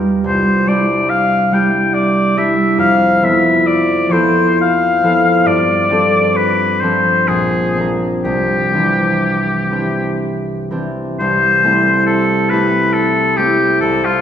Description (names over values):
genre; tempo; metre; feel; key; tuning
classical, impressionist duo for oboe and harp; 60-72 BPM; 3/4; rubato; C major; A4 = 440 Hz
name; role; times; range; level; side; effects
concert harp; accompaniment; 0.0-14.2 s; Bb1 to Bb4; -15 LUFS; right 1 dB; none
clear oboe; melody; 0.3-14.2 s; F4 to G5; -14 LUFS; left 2 dB; none
room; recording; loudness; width
wet concert hall reverb, RT60 1.8 s; heard from further back in the room; -12 LUFS; side -9 dB against mid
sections
0.0-11.2 A section; 11.2-14.2 A section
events
none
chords
0.3 Cadd9; 2.8 Fmaj7#11; 5.5 G9sus4; 7.3 Bb9; 8.3 Cadd9; 11.2 C6